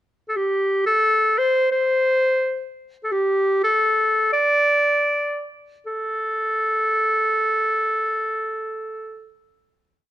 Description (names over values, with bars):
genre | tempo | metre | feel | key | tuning
andean folk | 87 BPM | 2/4 | straight | unclear | A4 = 437 Hz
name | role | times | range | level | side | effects
clear clarinet | solo | 0.3-9.4 s | G4 to D5 | -18 LUFS | equal | none
room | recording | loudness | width
light reverb | close, detailed microphones | -18 LUFS | side -13 dB against mid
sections
0.0-0.4 pickup bar; 0.4-5.9 A section; 5.9-8.6 final note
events
none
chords
none